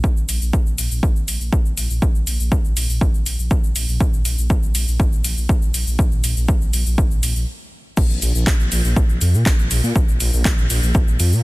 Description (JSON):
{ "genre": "melodic techno", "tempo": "121 BPM", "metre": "4/4", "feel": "straight", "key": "unclear", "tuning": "A4 = 440 Hz", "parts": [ { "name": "dark detuned saw bass", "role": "bass", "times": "0.0-11.4 s", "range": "Ab1 to Bb2", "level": "-20 LUFS", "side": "equal", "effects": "sidechain pumping" }, { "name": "electronic kick drum", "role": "drums", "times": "0.0-11.1 s", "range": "none", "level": "-17 LUFS", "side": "equal", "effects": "studio reverb" }, { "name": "techno drum kit", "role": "drums", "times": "0.0-11.4 s", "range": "crash cymbal, handclaps, hi-hat, shaker", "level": "-25 LUFS", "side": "equal", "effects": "studio reverb" } ], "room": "little or no reverb", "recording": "dense, heavily limited modern master", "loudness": "-16 LUFS", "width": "side -21 dB against mid", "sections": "0.0-8.0 A section; 8.0-11.4 B section", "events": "build-up 0.0-8.0; stop 7.5-8.0; drop 8.0-11.4", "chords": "none", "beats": "| 0.04 0.54 1.03 1.53 | 2.02 2.52 3.02 3.51 | 4.01 4.50 5.00 5.49 | 5.99 6.49 6.98 7.48 | 7.97 8.47 8.96 9.46 | 9.96 10.45 10.95" }